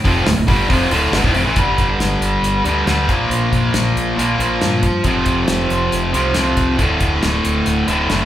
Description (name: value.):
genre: classic rock.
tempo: 138 BPM.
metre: 4/4.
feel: straight.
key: D minor.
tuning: A4 = 439 Hz.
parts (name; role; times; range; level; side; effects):
distorted electric guitar; riff; 0.0-8.3 s; D2 to Bb3; -16 LUFS; equal; overdrive.
growling fingered electric bass; bass; 0.1-8.3 s; D1 to G2; -22 LUFS; equal; overdrive.
damped 70s drum kit; drums; 0.1-8.2 s; hi-hat, kick drum, snare drum; -20 LUFS; equal; none.
room: moderate large studio reverb, RT60 0.8 s.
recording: band playing live in one room.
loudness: -14 LUFS.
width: side -12 dB against mid.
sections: 0.0-1.6 A section; 1.6-8.3 B section.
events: none.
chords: 0.0 Dm; 1.6 G5; 3.1 Bb5; 5.0 F5; 6.8 D5.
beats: 0.27 0.70 1.13 | 1.57 2.00 2.44 2.87 | 3.31 3.74 4.18 4.61 | 5.05 5.48 5.92 6.36 | 6.79 7.23 7.66 8.10.